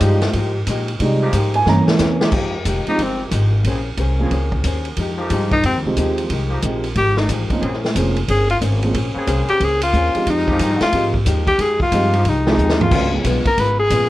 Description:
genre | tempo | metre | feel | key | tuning
jazz, big band swing | 181 BPM | 4/4 | swing 64% on 8ths | F minor | A4 = 438 Hz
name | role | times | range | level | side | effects
archtop guitar, miked and amplified | accompaniment | 0.0-14.1 s | C3 to C5 | -26 LUFS | left 3 dB | none
dark baby grand piano | accompaniment | 0.0-13.4 s | E3 to Bb5 | -21 LUFS | right 3 dB | none
mellow trombone section | sustained chords | 0.0-13.1 s | Db3 to Ab4 | -28 LUFS | equal | none
upright bass | bass | 0.0-14.1 s | F1 to C3 | -20 LUFS | equal | none
swinging big-band drum kit | drums | 0.0-14.0 s | crash cymbal, hi-hat, kick drum, ride cymbal, snare drum, toms | -23 LUFS | equal | none
clear tenor saxophone | melody | 2.9-3.2, 5.5-14.1 s | C4 to Cb5 | -18 LUFS | left 1 dB | none
room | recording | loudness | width
light reverb | worn, warbling old tape, cassette tape, warbly pitch drift | -15 LUFS | side -16 dB against mid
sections
0.0-2.3 A section; 2.3-14.1 A section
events
grand piano solo 0.0-2.3; drum fill 1.7-2.3, 12.6-12.9; tenor saxophone solo 2.3-14.1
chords
0.0 Fm9; 1.7 C7b9; 2.3 Fm9; 3.7 Bbm9; 5.0 Fm9; 7.6 Bbm9; 10.3 Fm9; 12.9 Db7

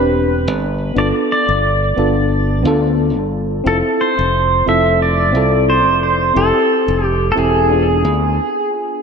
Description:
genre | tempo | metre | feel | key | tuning
sunset chillout | 89 BPM | 4/4 | swing 55% on 16ths | unclear | A4 = 440 Hz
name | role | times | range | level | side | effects
pedal steel guitar | melody | 0.0-8.7 s | G#4 to E5 | -16 LUFS | right 2 dB | lush chorus, analog delay
mellow FM electric piano | accompaniment | 0.0-9.0 s | B3 to B4 | -17 LUFS | left 1 dB | chorus, auto-pan, analog delay
modern bright fingered electric bass | bass | 0.0-8.4 s | E1 to D2 | -18 LUFS | equal | none
room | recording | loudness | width
wet lush hall reverb, RT60 2.7 s | dreamy mix soaked in reverb, nothing above 10.7 kHz | -13 LUFS | side -6 dB against mid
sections
0.0-9.0 A section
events
break 8.4-9.0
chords
0.0 Am11 (rootless); 0.6 G9; 3.7 Dm9/F; 6.4 Fmaj9; 7.7 E7b9

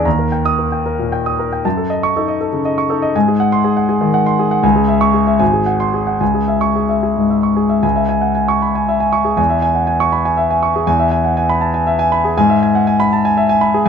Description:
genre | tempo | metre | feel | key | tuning
classical, virtuoso piano study | 73-82 BPM (dotted quarters) | 6/8 | rubato | C# minor | A4 = 441 Hz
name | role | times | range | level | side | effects
clear concert grand piano | solo | 0.0-13.9 s | G#1 to D#6 | -12 LUFS | equal | none
room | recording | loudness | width
light reverb | minimal, uncompressed stereo recording | -13 LUFS | side -7 dB against mid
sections
0.0-7.8 A section; 7.8-13.9 B section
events
none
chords
0.0 D#; 1.6 D#m7b5/F#; 3.1 G#7; 4.6 C#m; 5.4 G#7; 6.2 C#m; 9.4 C#m/E; 10.9 E; 12.4 E/G#

